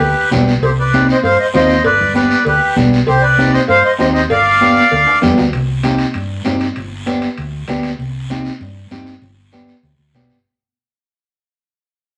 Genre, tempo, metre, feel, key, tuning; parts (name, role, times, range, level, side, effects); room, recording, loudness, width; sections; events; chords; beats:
latin, cumbia; 195 BPM; 4/4; straight; C harmonic minor; A4 = 440 Hz
accordion; melody; 0.0-5.2 s; G4 to F5; -14 LUFS; equal
hollow-body short-scale fingered electric bass; bass; 0.0-10.4 s; G1 to G2; -22 LUFS; equal
congas; percussion; 0.0-10.3 s; -25 LUFS; equal
cowbell and timbales; percussion; 0.0-8.0 s; -26 LUFS; equal
guiro; percussion; 0.0-10.5 s; -30 LUFS; equal
semi-hollow electric guitar; accompaniment; 0.3-10.4 s; B3 to G4; -19 LUFS; equal
wet studio reverb, RT60 0.7 s; -14 LUFS; mono
0.0-5.5 A section; 5.5-10.5 B section
drum fill 5.1-5.5; fade-out 5.5-10.5
0.0 G; 0.6 Cm; 1.8 G; 3.1 Cm; 4.3 G7; 5.5 Cm; 6.8 G; 8.0 Cm; 9.2 G
0.01 0.32 | 0.62 0.93 1.24 1.54 | 1.85 2.16 2.46 2.77 | 3.08 3.38 3.69 4.00 | 4.30 4.61 4.92 5.22 | 5.53 5.84 6.15 6.45 | 6.76 7.07 7.38 7.68 | 7.99 8.30 8.61 8.92 | 9.23 9.53 9.84 10.15